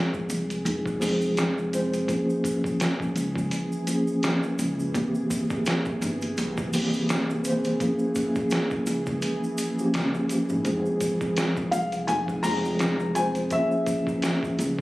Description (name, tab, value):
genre	trip hop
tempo	84 BPM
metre	4/4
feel	swing 56% on 16ths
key	F harmonic minor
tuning	A4 = 438 Hz
part	mellow tine electric piano	accompaniment	0.0-14.8 s	E3 to C5	-26 LUFS	equal	tremolo, tape echo
part	bowed-like drone	texture	0.3-14.8 s	E3 to Ab4	-36 LUFS	equal	built-in reverb
part	trip hop sampler-style drum kit	drums	0.1-14.8 s	hi-hat, kick drum, snare drum	-29 LUFS	equal	vintage 12-bit sampler grit, studio reverb
part	maracas	percussion	0.1-14.8 s	none	-41 LUFS	right 2 dB	none
part	upright bass	bass	0.3-14.8 s	F1 to Db2	-32 LUFS	equal	none
part	felt-muted upright piano	melody	11.7-14.6 s	E5 to Bb5	-27 LUFS	left 1 dB	tape echo
room	light reverb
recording	recorded on a phone in the room, studio reverb, vinyl crackle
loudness	-23 LUFS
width	side -18 dB against mid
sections	0.0-14.8 A section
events	none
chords	0.0 Fm; 2.1 Db6; 4.9 C7; 7.8 Bbm7; 10.7 Fm; 13.5 Db6